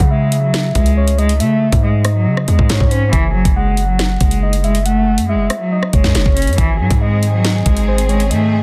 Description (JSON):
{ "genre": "hip hop, drill", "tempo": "139 BPM", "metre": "4/4", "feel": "half-time", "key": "C# harmonic minor", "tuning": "A4 = 440 Hz", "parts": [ { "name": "clear cello", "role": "melody", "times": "0.0-8.6 s", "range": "E3 to C#4", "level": "-21 LUFS", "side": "equal", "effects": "low-pass filter" }, { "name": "soft octave-layered synth lead", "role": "second line", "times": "0.0-8.6 s", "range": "B#4 to G#5", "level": "-25 LUFS", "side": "equal", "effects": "chorus, delay" }, { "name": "hard-hitting 808-style bass", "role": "bass", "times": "0.0-8.6 s", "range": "F#1 to C#3", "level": "-18 LUFS", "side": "equal", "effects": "none" }, { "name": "drill drum kit", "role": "drums", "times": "0.0-8.4 s", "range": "hi-hat, kick drum, rim click, snare drum", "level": "-19 LUFS", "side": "equal", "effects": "none" }, { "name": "warm studio string section", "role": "sustained chords", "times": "6.6-8.6 s", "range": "D#3 to G#4", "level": "-27 LUFS", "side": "equal", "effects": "none" } ], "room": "digital ambience", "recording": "dense, heavily limited modern master", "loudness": "-14 LUFS", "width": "mono", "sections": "0.0-8.6 A section", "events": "none", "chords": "0.0 C#m; 3.1 F#5; 6.6 G#", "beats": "0.11 0.54 0.97 | 1.40 1.83 2.27 2.70 | 3.13 3.56 3.99 4.42 | 4.86 5.29 5.72 6.15 | 6.58 7.01 7.45 7.88 | 8.31" }